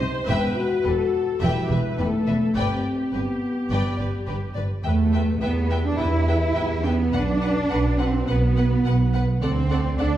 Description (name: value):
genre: cinematic, epic orchestral film score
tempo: 105 BPM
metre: 4/4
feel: straight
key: unclear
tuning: A4 = 439 Hz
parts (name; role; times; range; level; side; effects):
- warm symphonic violin section; melody; 0.0-10.1 s; B4 to G5; -35 LUFS; left 4 dB; none
- clear symphonic violin section; second line; 0.0-10.1 s; G4 to F#5; -35 LUFS; left 2 dB; none
- clear symphonic viola section; accompaniment; 0.0-10.1 s; G4 to C5; -33 LUFS; right 1 dB; none
- warm symphonic cello section; bass; 0.0-10.2 s; E2 to E4; -25 LUFS; right 2 dB; none
- warm symphonic double bass section; bass; 0.0-10.2 s; E1 to E2; -23 LUFS; right 1 dB; none
- dark French horn section; sustained chords; 0.3-10.2 s; A3 to D5; -28 LUFS; left 3 dB; none
room: wet recital hall reverb, RT60 1.6 s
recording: heard from further back in the room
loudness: -20 LUFS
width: side -12 dB against mid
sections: 0.0-4.9 A section; 4.9-10.2 B section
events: none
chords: 0.3 Em; 2.6 G; 4.9 Em; 7.1 Bm; 9.4 D